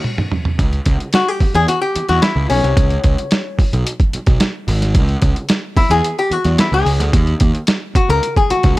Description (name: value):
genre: funk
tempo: 110 BPM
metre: 4/4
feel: straight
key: C# dorian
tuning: A4 = 439 Hz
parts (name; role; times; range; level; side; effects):
- lo-fi sampler-style drum kit; drums; 0.0-8.8 s; hi-hat, kick drum, snare drum, toms; -16 LUFS; right 1 dB; overdrive
- fuzz picked electric bass; bass; 0.6-8.7 s; G#1 to E2; -17 LUFS; right 1 dB; overdrive
- archtop guitar, miked and amplified; accompaniment; 1.1-8.8 s; C#4 to A#4; -17 LUFS; left 3 dB; wah
room: little or no reverb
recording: none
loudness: -13 LUFS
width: side -18 dB against mid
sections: 0.6-8.8 A section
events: drum fill 0.0-0.6; band accent 0.0-0.6; hollow-body jazz guitar solo 0.6-8.8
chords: 0.0 N.C.; 0.6 C#m; 7.1 D#5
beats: 0.04 | 0.59 1.13 1.68 2.22 | 2.77 3.31 3.86 4.41 | 4.95 5.50 6.04 6.59 | 7.13 7.68 8.23 8.77